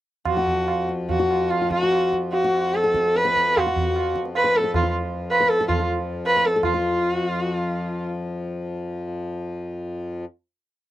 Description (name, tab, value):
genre	indian classical, Hindustani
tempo	143-179 BPM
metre	4/4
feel	straight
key	unclear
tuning	A4 = 440 Hz
part	warm sarangi	melody	0.3-8.0 s	F4 to B4	-21 LUFS	equal	none
part	hand-pumped harmonium	drone	0.3-10.3 s	F2 to F3	-29 LUFS	left 2 dB	none
part	tabla	percussion	0.3-6.8 s	none	-27 LUFS	right 4 dB	none
part	flamenco guitar	second line	0.4-8.1 s	F4 to B4	-28 LUFS	left 5 dB	none
room	light reverb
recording	dry, close 1970s-style studio recording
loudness	-20 LUFS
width	side -14 dB against mid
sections	0.3-6.6 theme; 6.6-9.4 final chord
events	speeding up 0.3-9.4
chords	none